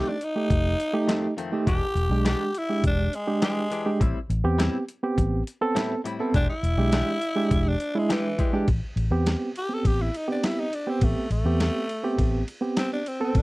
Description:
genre	straight-eighth soul blues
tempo	103 BPM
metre	4/4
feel	straight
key	A minor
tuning	A4 = 440 Hz
part	growling tenor saxophone	melody	0.0-13.4 s	E3 to A4	-28 LUFS	equal	none
part	barky reed electric piano	accompaniment	0.0-13.4 s	G#3 to A4	-26 LUFS	right 2 dB	tremolo
part	direct-recorded clean electric guitar	stabs	0.0-8.7 s	F2 to G4	-32 LUFS	left 4 dB	lush chorus
part	boom bap sampler-style drum kit	drums	0.2-13.4 s	hi-hat, kick drum, ride cymbal, snare drum	-28 LUFS	equal	overdrive
part	vintage muted fingered electric bass	bass	0.5-13.4 s	E1 to E2	-24 LUFS	equal	none
room	light reverb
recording	dry, close 1970s-style studio recording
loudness	-22 LUFS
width	side -21 dB against mid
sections	0.0-8.7 A section; 8.7-13.4 A section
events	tenor saxophone solo 0.0-8.7, 8.7-13.4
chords	0.0 F7; 1.7 E7#9; 4.0 Am7; 6.3 E7#9; 8.7 Am7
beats	0.50 1.09 | 1.67 2.25 2.84 3.42 | 4.01 4.59 5.17 5.76 | 6.34 6.93 7.51 8.09 | 8.68 9.26 9.85 10.43 | 11.01 11.60 12.18 12.76 | 13.35

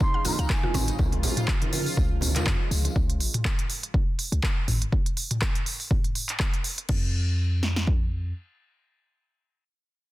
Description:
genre	afro house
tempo	122 BPM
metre	4/4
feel	swing 56% on 16ths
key	unclear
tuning	A4 = 441 Hz
part	breathy mellow bansuri	melody	0.0-1.0 s	Ab5 to C6	-34 LUFS	equal	dub echo
part	warm analog pad	sustained chords	0.0-2.9 s	Db3 to F4	-35 LUFS	right 1 dB	chorus, sidechain pumping
part	deep house drum kit	drums	0.0-8.0 s	kick drum, snare drum	-25 LUFS	equal	none
part	congas	percussion	0.0-2.9 s	none	-32 LUFS	right 2 dB	none
part	tambourine	percussion	0.0-2.9 s	none	-37 LUFS	left 6 dB	none
part	mallet-like synth pluck	arpeggios	0.1-0.8 s	C4 to F5	-36 LUFS	right 2 dB	chorus, sidechain pumping, dub echo
part	deep house drum kit	drums	0.3-7.0 s	crash cymbal, handclaps, hi-hat, rim click, toms	-29 LUFS	equal	none
part	warm 808-style bass	bass	0.4-8.3 s	Ab1 to F2	-26 LUFS	equal	tube saturation, sidechain pumping
room	digital ambience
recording	dense, heavily limited modern master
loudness	-23 LUFS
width	side -17 dB against mid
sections	0.0-6.9 A section; 6.9-10.1 B section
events	drop 0.0-6.9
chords	0.0 Dbadd9; 6.9 N.C.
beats	0.01 0.50 | 0.99 1.48 1.97 2.46 | 2.96 3.45 3.94 4.43 | 4.92 5.42 5.91 6.40 | 6.89 7.38 7.87

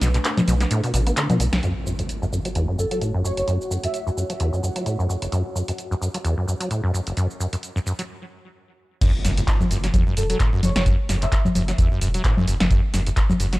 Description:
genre	acid house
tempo	130 BPM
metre	4/4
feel	swing 56% on 16ths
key	F# minor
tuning	A4 = 440 Hz
part	dark analog pad	sustained chords	0.0-8.1 s	A3 to E5	-36 LUFS	equal	none
part	acid bass, saw	riff	0.0-13.6 s	F#1 to B3	-24 LUFS	equal	tube saturation, lush chorus, cassette tape
part	round analog bass	bass	0.0-1.6, 9.2-13.6 s	E1 to B1	-23 LUFS	equal	sidechain pumping
part	punchy analog drum machine	drums	0.0-13.6 s	congas, crash cymbal, handclaps, hi-hat, shaker, snare drum	-25 LUFS	left 1 dB	none
part	impact	sound effects	1.6-3.5, 9.0-10.9 s	none	-32 LUFS	equal	none
part	warbly tape-like pad	texture	2.5-8.1 s	F#4 to F#5	-35 LUFS	equal	chorus, built-in reverb, sidechain pumping
part	breathy flute-like synth lead	melody	2.8-4.0, 10.2-11.4 s	A4 to E5	-30 LUFS	right 1 dB	ensemble chorus, analog delay
part	electronic kick drum	drums	9.0-13.3 s	none	-20 LUFS	equal	none
room	little or no reverb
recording	none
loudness	-20 LUFS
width	side -19 dB against mid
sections	0.0-1.6 A section; 1.6-9.0 B section; 9.0-13.6 A section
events	break 0.0-1.6, 8.1-9.0; drop 0.0-1.6, 9.0-13.6; impact 1.6-3.5, 9.0-10.9; filter sweep on acid bass 1.6-9.0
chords	0.0 Bm7; 1.6 F#m7; 9.0 F#7(no3)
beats	0.24 0.71 1.17 | 1.63 2.09 2.55 3.01 | 3.48 3.94 4.40 4.86 | 5.32 5.78 6.25 6.71 | 7.17 7.63 8.09 8.55 | 9.01 9.48 9.94 10.40 | 10.86 11.32 11.78 12.24 | 12.71 13.17

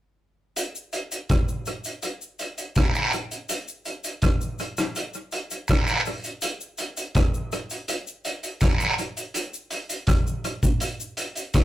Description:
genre	reggae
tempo	82 BPM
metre	4/4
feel	straight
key	none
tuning	none
part	vintage drum kit	drums	0.6-11.6 s	hi-hat, kick drum, rim click	-24 LUFS	equal	tape echo
part	cabasa and guiro	percussion	0.6-11.6 s	none	-29 LUFS	right 1 dB	none
room	moderate studio ambience, RT60 0.5 s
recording	rough rehearsal-room recording, tube saturation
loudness	-24 LUFS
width	side -14 dB against mid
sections	0.6-6.4 A section; 6.4-11.6 B section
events	none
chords	none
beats	| 0.56 1.30 2.03 2.76 | 3.49 4.22 4.96 5.69 | 6.42 7.15 7.88 8.62 | 9.35 10.08 10.81 11.54

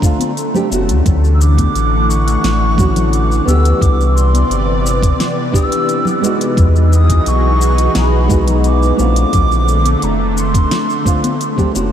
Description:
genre	sunset chillout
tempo	87 BPM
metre	4/4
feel	straight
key	unclear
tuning	A4 = 441 Hz
part	baroque flute	melody	0.0-11.7 s	Bb5 to E6	-20 LUFS	right 2 dB	analog delay
part	nylon-string guitar	accompaniment	0.0-11.9 s	G#3 to G4	-20 LUFS	right 1 dB	auto-pan, analog delay
part	lush unison pad	sustained chords	0.0-11.9 s	C3 to F#5	-19 LUFS	equal	chorus, phaser
part	electronic kick drum	drums	0.0-11.7 s	none	-14 LUFS	equal	none
part	smooth R&B drum kit	drums	0.0-11.9 s	hi-hat, shaker, snare drum	-24 LUFS	left 1 dB	none
part	congas	percussion	0.2-11.9 s	none	-26 LUFS	left 4 dB	none
part	warm sub bass	bass	0.7-11.9 s	F1 to E2	-13 LUFS	equal	none
room	moderate huge ambient reverb, RT60 7.1 s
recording	dreamy mix soaked in reverb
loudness	-11 LUFS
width	side -10 dB against mid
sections	0.0-11.9 A section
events	none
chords	0.0 Bbmaj9; 1.1 Dmaj9; 3.8 Cmaj9; 6.6 Emaj9; 9.0 Bbmaj9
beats	0.37 | 1.06 1.75 2.44 3.13 | 3.82 4.51 5.20 5.89 | 6.58 7.27 7.96 8.65 | 9.34 10.03 10.72 11.40

